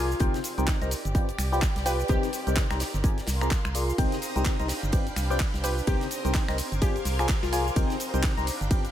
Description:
piano house; 127 BPM; 4/4; swing 59% on 16ths; C minor; A4 = 442 Hz
glassy wavetable pluck; melody; 0.0-2.3, 5.6-7.8 s; F4 to B4; -35 LUFS; left 2 dB; chorus, diffuse ambient delay
barking FM electric piano; riff; 0.0-8.8 s; C3 to C6; -30 LUFS; left 1 dB; phaser, vintage 12-bit sampler grit, sidechain pumping, diffuse ambient delay
organ-like FM bass; bass; 0.0-8.9 s; G1 to C2; -29 LUFS; equal; sidechain pumping
rich symphonic string section; texture; 0.0-8.9 s; C4 to C6; -39 LUFS; equal; sidechain pumping
house drum kit; drums; 0.1-8.9 s; cabasa, finger snaps, handclaps, hi-hat, ride cymbal; -34 LUFS; equal
electronic kick drum; drums; 0.2-8.8 s; -26 LUFS; equal
gated 80s drum kit; drums; 0.2-8.9 s; hi-hat, snare drum; -42 LUFS; left 1 dB
string machine, violins; sustained chords; 4.0-8.9 s; C5 to Ab6; -37 LUFS; right 1 dB; ensemble chorus, sidechain pumping
light reverb; -24 LUFS; side -11 dB against mid
0.0-8.9 A section
0.2 Cm7; 0.9 G7; 2.1 Cm7; 2.8 Bb7; 4.0 Cm7; 4.7 G7; 5.9 Cm7; 6.6 Bb7; 7.8 Cm7

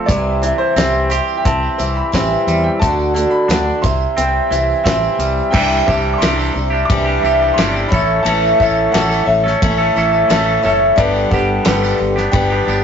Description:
folk rock and heartland rock; 88 BPM; 4/4; straight; A4 = 442 Hz
picked twelve-string acoustic guitar; accompaniment; 0.0-12.8 s; A2 to D5; -16 LUFS; equal
twangy electric guitar; riff; 0.0-12.8 s; G2 to A4; -20 LUFS; right 1 dB
bright baby grand piano; melody; 0.1-12.8 s; C5 to D6; -22 LUFS; equal
fingered electric bass; bass; 0.1-12.8 s; F#1 to E2; -21 LUFS; equal
damped 70s drum kit; drums; 0.1-12.5 s; crash cymbal, hi-hat, kick drum, ride cymbal, snare drum; -19 LUFS; equal
tambourine; percussion; 0.8-12.8 s; -35 LUFS; right 5 dB
wet small room reverb, RT60 0.6 s; rough rehearsal-room recording, tube saturation, nothing above 7.6 kHz; -12 LUFS; side -7 dB against mid
0.0-5.5 A section; 5.5-12.8 B section
0.1 C; 2.8 D; 3.8 C; 5.5 Cadd9; 7.9 A; 11.0 G

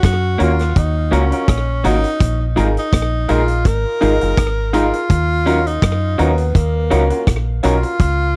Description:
lovers rock reggae; 83 BPM; 4/4; swing 55% on 16ths; Eb minor; A4 = 440 Hz
breathy tenor saxophone; melody; 0.0-8.4 s; Bb3 to Bb4; -23 LUFS; equal; tape echo
deep dub fingered electric bass; bass; 0.0-8.3 s; Gb1 to Gb2; -20 LUFS; equal
vintage drum kit; drums; 0.0-8.2 s; hi-hat, kick drum, rim click; -19 LUFS; equal; slapback echo
clear grand piano; accompaniment; 0.4-7.9 s; Db4 to Bb4; -22 LUFS; equal; slapback echo
electric guitar through a small old amp; stabs; 0.4-7.9 s; Gb3 to Bb4; -22 LUFS; equal
little or no reverb; dry, close 1970s-style studio recording; -16 LUFS; mono
0.0-8.4 A section
0.0 Ebm7; 2.2 Bb7sus4; 5.1 Ebm7

